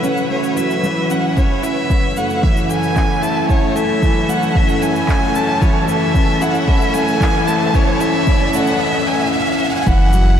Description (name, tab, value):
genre	piano and strings electronica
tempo	113 BPM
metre	4/4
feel	straight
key	unclear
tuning	A4 = 440 Hz
part	dark violin	melody	0.0-10.4 s	C#5 to A5	-20 LUFS	right 1 dB	ping-pong delay
part	rich studio string section	sustained chords	0.0-10.4 s	F#2 to B4	-26 LUFS	equal	low-pass filter
part	felt-muted upright piano	riff	0.0-10.4 s	E3 to E4	-18 LUFS	left 1 dB	ping-pong delay
part	electronic shaker and handclaps	drums	0.0-10.2 s	none	-31 LUFS	equal	high-pass filter on perc, high-pass filter on snare, high-pass filter on room
part	electronic kick drum	drums	1.4-10.0 s	none	-16 LUFS	equal	none
part	riser	sound effects	4.5-9.9 s	none	-28 LUFS	equal	none
part	warm sub bass	bass	9.9-10.4 s	F#1	-13 LUFS	equal	sidechain pumping
room	wet huge ambient reverb, RT60 8.8 s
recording	dreamy mix soaked in reverb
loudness	-14 LUFS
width	side -9 dB against mid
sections	0.0-9.9 A section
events	build-up 0.0-9.9; filter sweep on string section 0.0-9.9; riser 4.5-9.9; break 8.8-9.9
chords	0.0 F#m7